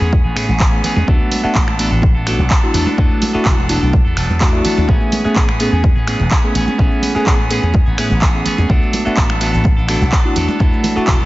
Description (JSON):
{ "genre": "filtered disco house", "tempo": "126 BPM", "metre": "4/4", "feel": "straight", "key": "A major", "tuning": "A4 = 442 Hz", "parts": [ { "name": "bell-like tine electric piano", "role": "accompaniment", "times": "0.0-11.2 s", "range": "A3 to G#4", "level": "-19 LUFS", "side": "equal", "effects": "phaser, sidechain pumping, low-pass filter" }, { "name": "clean electric guitar", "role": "riff", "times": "0.0-11.3 s", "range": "E3 to A4", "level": "-22 LUFS", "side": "right 1 dB", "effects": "sidechain pumping, low-pass filter" }, { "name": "slap bass with an envelope filter", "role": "bass", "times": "0.0-11.3 s", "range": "E1 to A2", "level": "-18 LUFS", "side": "equal", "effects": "tube saturation, sidechain pumping, low-pass filter" }, { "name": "egg shaker and congas", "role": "percussion", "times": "0.0-11.3 s", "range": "none", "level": "-26 LUFS", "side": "right 3 dB", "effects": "sidechain pumping on perc, low-pass filter on perc" }, { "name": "electronic kick drum", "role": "drums", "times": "0.1-11.2 s", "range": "none", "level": "-15 LUFS", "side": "equal", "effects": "none" }, { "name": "punchy analog drum machine", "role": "drums", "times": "0.4-11.2 s", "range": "finger snaps, handclaps, hi-hat", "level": "-22 LUFS", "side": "right 1 dB", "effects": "sidechain pumping on hats" } ], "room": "light reverb, digital ambience", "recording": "nothing above 7.7 kHz", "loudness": "-12 LUFS", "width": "side -18 dB against mid", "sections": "0.0-11.3 A section", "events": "none", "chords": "0.0 Amaj9; 1.1 D6; 2.7 E9sus4; 4.9 Amaj9; 8.7 D6; 10.4 E9sus4" }